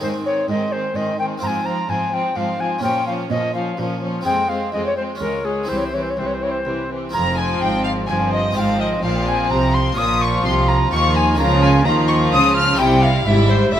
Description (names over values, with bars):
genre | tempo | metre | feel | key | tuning
classical, baroque-style concerto movement with solo episodes | 127 BPM | 3/4 | straight | F minor | A4 = 441 Hz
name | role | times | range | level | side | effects
mellow alto recorder | melody | 0.0-13.8 s | Ab4 to F6 | -22 LUFS | left 1 dB | none
rich chamber violin section | melody | 0.0-13.8 s | F4 to F6 | -27 LUFS | left 4 dB | none
rich chamber violin section | second line | 0.0-13.8 s | C4 to F4 | -25 LUFS | equal | none
dark chamber viola section | accompaniment | 0.0-13.8 s | Eb3 to Ab3 | -25 LUFS | left 3 dB | none
harpsichord | accompaniment | 0.0-13.8 s | C2 to Db5 | -29 LUFS | right 2 dB | none
rich chamber cello section | bass | 0.0-13.8 s | C2 to Eb3 | -22 LUFS | right 2 dB | none
warm studio double bass section | bass | 7.1-13.8 s | F1 to Eb2 | -22 LUFS | right 2 dB | none
room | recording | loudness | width
moderate recital hall reverb, RT60 1.5 s | close, detailed microphones | -16 LUFS | side -10 dB against mid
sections
0.0-7.1 A section; 7.1-13.8 B section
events
none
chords
0.0 Ab; 1.4 Fm/Ab; 2.8 Bbm; 4.2 Fm; 5.2 Db; 5.7 C; 7.1 Fm; 8.6 Fm/Ab; 10.0 Bbm; 11.4 Bbm/Db; 12.8 C